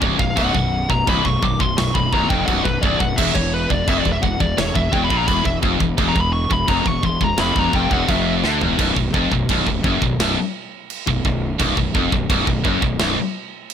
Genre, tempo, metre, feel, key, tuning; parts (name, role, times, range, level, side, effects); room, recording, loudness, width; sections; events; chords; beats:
heavy metal; 86 BPM; 4/4; straight; B harmonic minor; A4 = 440 Hz
heavy high-gain guitar; riff; 0.0-13.2 s; B1 to D3; -23 LUFS; left 10 dB; distortion
heavy high-gain guitar; riff; 0.0-13.2 s; B1 to D3; -23 LUFS; right 13 dB; distortion
fuzz fingered electric bass; bass; 0.0-13.2 s; B0 to D2; -23 LUFS; right 1 dB; overdrive
tight metal drum kit; drums; 0.0-13.7 s; china cymbal, crash cymbal, kick drum, snare drum, toms; -23 LUFS; right 1 dB
high-gain lead guitar; melody; 0.2-8.3 s; B4 to D6; -22 LUFS; left 2 dB; distortion
small room ambience; -16 LUFS; side -8 dB against mid
0.0-8.8 A section; 8.8-13.7 B section
lead electric guitar solo 0.0-8.8; drum fill 8.4-8.8
0.0 B5; 3.2 N.C.; 8.8 B5
| 0.36 1.07 1.77 2.47 | 3.17 3.88 4.58 5.28 | 5.98 6.68 7.39 8.09 | 8.79 9.49 10.19 10.89 | 11.60 12.30 13.00 13.70